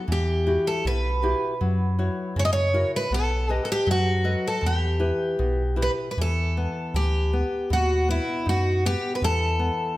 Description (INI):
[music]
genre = fado-style ballad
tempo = 79 BPM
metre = 2/4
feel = rubato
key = E harmonic minor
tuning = A4 = 442 Hz
[part]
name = nylon-string guitar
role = accompaniment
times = 0.0-10.0 s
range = B2 to D#5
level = -29 LUFS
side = left 2 dB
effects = none
[part]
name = picked twelve-string acoustic guitar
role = melody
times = 0.1-10.0 s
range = E4 to D#5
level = -25 LUFS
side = equal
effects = none
[part]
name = round analog bass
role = bass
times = 0.1-9.7 s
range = B1 to F#2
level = -25 LUFS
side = equal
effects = none
[sound]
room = light reverb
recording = none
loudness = -22 LUFS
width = side -16 dB against mid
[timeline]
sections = 0.0-6.2 A section; 6.2-10.0 A section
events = none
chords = 0.1 Emadd9; 1.6 F#7; 3.1 B7; 4.6 Em; 7.7 B/D#; 9.2 E5